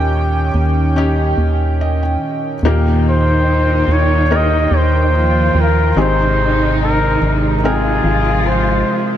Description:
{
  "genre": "pop ballad",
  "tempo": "72 BPM",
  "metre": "4/4",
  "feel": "straight",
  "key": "unclear",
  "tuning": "A4 = 440 Hz",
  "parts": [
    { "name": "breathy flugelhorn", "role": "melody", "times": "0.0-9.1 s", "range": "G4 to Eb5", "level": "-19 LUFS", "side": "equal", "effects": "ping-pong delay" },
    { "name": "felt-muted upright piano", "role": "accompaniment", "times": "0.0-9.2 s", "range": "Ab2 to G5", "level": "-21 LUFS", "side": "left 2 dB", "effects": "none" },
    { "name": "chorused pulse-width pad", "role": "sustained chords", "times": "0.0-9.2 s", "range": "C3 to G5", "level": "-21 LUFS", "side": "right 2 dB", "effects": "none" },
    { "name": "organ-like FM bass", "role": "bass", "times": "0.0-8.8 s", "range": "Ab1 to Eb2", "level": "-16 LUFS", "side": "equal", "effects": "none" },
    { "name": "dark studio cello section", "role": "second line", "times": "2.6-9.2 s", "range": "Eb3 to F4", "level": "-20 LUFS", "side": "left 1 dB", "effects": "ping-pong delay" }
  ],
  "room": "moderate huge ambient reverb, RT60 3.6 s",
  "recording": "dreamy mix soaked in reverb",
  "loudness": "-12 LUFS",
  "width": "side -10 dB against mid",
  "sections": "0.0-2.6 A section; 2.6-9.2 B section",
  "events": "felt piano fill 1.4-2.6",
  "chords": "0.0 Eb7; 2.6 Eb; 6.0 Abmaj7",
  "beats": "0.13 0.97 1.80 | 2.63 3.47 4.30 5.13 | 5.97 6.80 7.63 8.47"
}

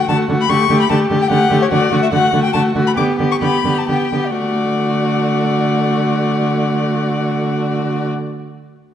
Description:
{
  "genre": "quick classical-period movement for string quartet",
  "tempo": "120-149 BPM",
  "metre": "3/4",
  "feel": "straight",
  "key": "D major",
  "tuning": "A4 = 441 Hz",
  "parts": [
    { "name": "rich violin", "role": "melody", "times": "0.0-8.1 s", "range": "C#5 to D6", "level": "-20 LUFS", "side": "left 6 dB", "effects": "none" },
    { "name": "rich violin", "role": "second line", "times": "0.0-8.1 s", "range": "F#4 to G4", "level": "-19 LUFS", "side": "left 3 dB", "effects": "none" },
    { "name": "warm viola", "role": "accompaniment", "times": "0.0-8.1 s", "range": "A3 to B3", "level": "-20 LUFS", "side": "right 1 dB", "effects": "none" },
    { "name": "rich cello", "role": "bass", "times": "0.1-8.1 s", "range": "D3", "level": "-20 LUFS", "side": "right 4 dB", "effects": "none" }
  ],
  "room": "moderate scoring stage reverb, RT60 1.7 s",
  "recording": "dark, warm production, lossy compression artefacts",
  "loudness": "-14 LUFS",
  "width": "side -9 dB against mid",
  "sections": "0.0-4.4 A section; 4.4-7.3 B section",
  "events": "slowing down 1.1-4.4",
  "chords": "0.5 Dadd11; 3.0 G/D; 4.4 D",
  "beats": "0.09 | 0.49 0.90 1.30 | 1.71 2.12 2.54 | 2.97 3.42 3.89 | 4.38 4.87 5.36 | 5.85 6.33 6.82"
}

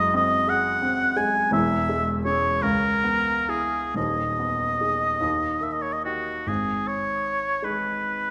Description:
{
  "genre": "classical, romantic duo for oboe and grand piano",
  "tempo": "42-59 BPM (dotted quarters)",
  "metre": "6/8",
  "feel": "rubato",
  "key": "G# minor",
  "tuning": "A4 = 439 Hz",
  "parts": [
    { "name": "clear oboe", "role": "melody", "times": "0.0-8.3 s", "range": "F#4 to G#5", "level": "-25 LUFS", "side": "equal", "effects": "none" },
    { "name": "warm baby grand piano", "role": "accompaniment", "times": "0.0-8.3 s", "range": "D#1 to G#4", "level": "-30 LUFS", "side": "equal", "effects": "none" }
  ],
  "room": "wet scoring stage reverb, RT60 1.7 s",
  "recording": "none",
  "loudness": "-24 LUFS",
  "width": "mono",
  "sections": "0.0-6.5 A section; 6.5-8.3 B section",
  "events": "none",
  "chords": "0.0 G#7/F#; 1.5 C#m/E; 2.6 C#m7; 4.0 G#m/D#; 5.2 D#; 6.5 G#m",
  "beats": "0.49 | 1.53 2.63 | 3.96 5.22 | 6.48 7.64"
}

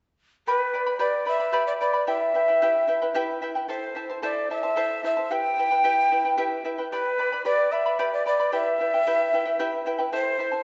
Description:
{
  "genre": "andean folk",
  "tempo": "74 BPM (dotted quarters)",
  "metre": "6/8",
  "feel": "straight",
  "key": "E minor",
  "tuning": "A4 = 440 Hz",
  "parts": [
    { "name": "mellow quena", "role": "melody", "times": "0.5-10.6 s", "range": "B4 to G5", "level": "-26 LUFS", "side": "equal", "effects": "none" },
    { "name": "charango", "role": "accompaniment", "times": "0.5-10.6 s", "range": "E4 to B5", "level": "-30 LUFS", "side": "equal", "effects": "none" }
  ],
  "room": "wet concert hall reverb, RT60 1.9 s",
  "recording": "nothing above 7.9 kHz",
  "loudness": "-24 LUFS",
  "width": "mono",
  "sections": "0.5-10.6 A section",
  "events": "none",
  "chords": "0.5 G; 2.1 Em; 3.7 Am; 5.3 Em; 6.9 G; 8.5 Em",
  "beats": "| 0.47 1.28 | 2.08 2.89 | 3.69 4.50 | 5.30 6.11 | 6.91 7.72 | 8.52 9.33 | 10.13"
}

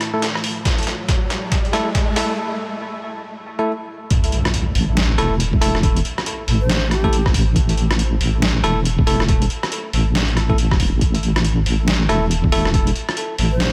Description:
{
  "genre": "deep dubstep",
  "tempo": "139 BPM",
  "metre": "4/4",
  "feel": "swing 61% on 16ths, half-time",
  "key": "A minor",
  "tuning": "A4 = 440 Hz",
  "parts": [
    { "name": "deep dark ambient pad", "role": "sustained chords", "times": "0.0-2.4 s", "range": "A3 to E4", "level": "-36 LUFS", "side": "equal", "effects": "chorus, built-in reverb" },
    { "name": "trip hop sampler-style drum kit", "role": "drums", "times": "0.0-13.7 s", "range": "hi-hat, rim click, snare drum", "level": "-25 LUFS", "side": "equal", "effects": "high-pass filter on hats, high-pass filter on snare, high-pass filter on room" },
    { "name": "riser and impact", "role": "sound effects", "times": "0.0-5.8 s", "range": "none", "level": "-28 LUFS", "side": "equal", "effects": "none" },
    { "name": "bell-like tine electric piano", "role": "stabs", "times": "0.1-12.7 s", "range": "A3 to A4", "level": "-27 LUFS", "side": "equal", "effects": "low-pass filter, dub echo" },
    { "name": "electronic kick drum", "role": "drums", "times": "0.7-12.8 s", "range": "none", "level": "-21 LUFS", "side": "equal", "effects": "none" },
    { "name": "deep soft wobble bass", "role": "bass", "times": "4.8-13.7 s", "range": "E1 to A1", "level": "-21 LUFS", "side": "equal", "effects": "chorus" },
    { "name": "breathy reedy ney", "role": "melody", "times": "6.6-7.3, 13.5-13.7 s", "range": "G4 to C5", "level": "-32 LUFS", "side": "equal", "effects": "dub echo" }
  ],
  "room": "light reverb, digital ambience",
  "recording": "none",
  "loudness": "-19 LUFS",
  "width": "mono",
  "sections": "0.0-4.1 A section; 4.1-13.7 B section",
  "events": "build-up 0.0-4.1; drum fill 0.0-2.4; riser 0.0-2.4; filter sweep on tine electric piano 0.0-4.1; break 2.4-4.1; drop 4.1-13.7; impact 4.1-5.8",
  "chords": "0.0 A5",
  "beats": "0.22 | 0.65 1.08 1.52 1.95 | 2.38 2.81 3.24 3.67 | 4.11 4.54 4.97 5.40 | 5.83 6.26 6.70 7.13 | 7.56 7.99 8.42 8.85 | 9.29 9.72 10.15 10.58 | 11.01 11.44 11.88 12.31 | 12.74 13.17 13.60"
}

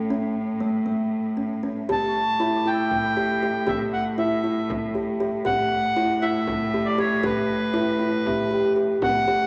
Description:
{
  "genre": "contemporary instrumental, chamber music in an uneven meter",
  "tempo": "235 BPM (eighths)",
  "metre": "7/8",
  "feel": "straight",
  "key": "unclear",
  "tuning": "A4 = 442 Hz",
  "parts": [
    { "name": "vibraphone with soft mallets", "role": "second line", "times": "0.0-0.1, 7.7-9.0 s", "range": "G4 to B4", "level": "-28 LUFS", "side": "equal", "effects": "none" },
    { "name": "warm cello", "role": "bass", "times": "0.0-9.5 s", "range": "A2", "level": "-30 LUFS", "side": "equal", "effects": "none" },
    { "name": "celesta", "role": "texture", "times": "0.0-9.2 s", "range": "E5 to E6", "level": "-37 LUFS", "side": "equal", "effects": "none" },
    { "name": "kalimba", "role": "arpeggios", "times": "0.1-9.4 s", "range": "A3 to G4", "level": "-29 LUFS", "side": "equal", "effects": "none" },
    { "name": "accordion", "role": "melody", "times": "1.9-9.5 s", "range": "B4 to A5", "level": "-27 LUFS", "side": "equal", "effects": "none" },
    { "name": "frame drum", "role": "percussion", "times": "1.9-9.4 s", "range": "none", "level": "-37 LUFS", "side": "equal", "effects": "none" }
  ],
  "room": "wet recital hall reverb, RT60 1.6 s",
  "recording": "none",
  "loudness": "-24 LUFS",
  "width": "mono",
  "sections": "0.0-9.0 A section",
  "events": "none",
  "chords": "0.0 A7; 1.9 Em/A",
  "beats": "| 0.11 0.36 0.62 0.87 1.13 1.38 1.64 | 1.89 2.15 2.40 2.66 2.91 3.17 3.42 | 3.68 3.93 4.19 4.44 4.70 4.95 5.21 | 5.46 5.72 5.97 6.22 6.48 6.74 6.99 | 7.24 7.50 7.75 8.01 8.26 8.52 8.77 | 9.03 9.28"
}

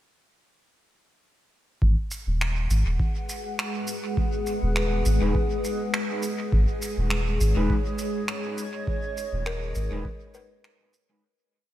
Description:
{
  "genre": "ambient dub",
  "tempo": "102 BPM",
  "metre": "4/4",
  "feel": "swing 53% on 16ths",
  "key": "G# minor",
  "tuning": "A4 = 441 Hz",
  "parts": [
    { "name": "granular cloud pad", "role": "sustained chords", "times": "3.1-11.2 s", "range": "G#3 to F#5", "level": "-30 LUFS", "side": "equal", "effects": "built-in reverb" },
    { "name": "soft dub sub bass", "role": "bass", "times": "1.8-10.0 s", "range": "D#1 to G#1", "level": "-23 LUFS", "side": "equal", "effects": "none" },
    { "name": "electronic kick drum", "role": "drums", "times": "1.8-10.2 s", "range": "none", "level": "-26 LUFS", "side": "equal", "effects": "none" },
    { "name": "shaker and finger snaps", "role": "drums", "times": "2.1-11.1 s", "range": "none", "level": "-32 LUFS", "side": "right 1 dB", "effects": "dub echo" },
    { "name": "mellow electric guitar", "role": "stabs", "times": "5.2-11.2 s", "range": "G#3 to B4", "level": "-34 LUFS", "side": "left 1 dB", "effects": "analog chorus, dub echo" },
    { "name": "kalimba", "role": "arpeggios", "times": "9.5-11.7 s", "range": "A#4 to B4", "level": "-39 LUFS", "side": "left 5 dB", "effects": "vintage 12-bit sampler grit" }
  ],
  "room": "studio reverb",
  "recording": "none",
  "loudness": "-24 LUFS",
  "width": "side -13 dB against mid",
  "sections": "1.8-11.2 groove",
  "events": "fade-out 8.1-11.2",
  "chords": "1.8 G#m7; 6.5 B6",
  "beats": "| 1.82 2.41 2.99 3.58 | 4.17 4.76 5.35 5.93 | 6.52 7.11 7.70 8.29 | 8.88 9.46 10.05 10.64"
}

